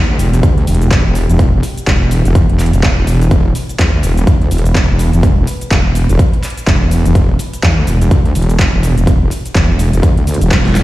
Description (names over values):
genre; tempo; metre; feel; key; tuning
bass house; 125 BPM; 4/4; swing 59% on 16ths; E minor; A4 = 440 Hz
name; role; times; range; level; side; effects
dark analog pad; sustained chords; 0.1-10.8 s; E4 to B5; -33 LUFS; left 1 dB; none
wobble bass; bass; 0.0-10.8 s; E1 to E2; -12 LUFS; equal; chorus, overdrive, sidechain pumping
big-room dance drum kit; drums; 0.2-10.8 s; handclaps, hi-hat, shaker, snare drum; -20 LUFS; equal; overdrive
electronic kick drum; drums; 0.4-10.6 s; none; -12 LUFS; equal; overdrive
room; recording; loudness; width
digital ambience; played on a big sound system in a bare room, stone room reverb; -10 LUFS; side -16 dB against mid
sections
0.0-10.8 A section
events
drum fill 10.5-10.8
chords
0.0 Emadd9